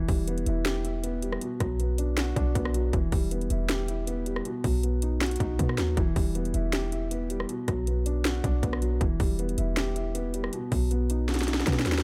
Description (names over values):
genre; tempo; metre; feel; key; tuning
hip hop, trap; 158 BPM; 4/4; half-time; E minor; A4 = 438 Hz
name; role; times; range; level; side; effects
dark concert grand piano; accompaniment; 0.0-12.0 s; B2 to G4; -33 LUFS; equal; low-pass filter
clean 808-style bass; bass; 0.0-12.0 s; E1 to B2; -31 LUFS; equal; none
trap drum kit; drums; 0.1-12.0 s; hi-hat, kick drum, rim click, snare drum; -31 LUFS; equal; none
room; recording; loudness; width
digital ambience; none; -28 LUFS; mono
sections
0.0-12.0 A section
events
drum fill 11.3-12.0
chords
0.0 Em; 1.4 Bm; 2.9 Em; 4.5 B; 6.0 Em; 7.5 Bm; 9.0 Em; 10.5 B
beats
0.28 0.66 1.03 | 1.41 1.79 2.17 2.55 | 2.93 3.31 3.69 4.07 | 4.45 4.83 5.21 5.59 | 5.97 6.35 6.73 7.11 | 7.49 7.87 8.25 8.63 | 9.01 9.39 9.77 10.15 | 10.53 10.91 11.29 11.67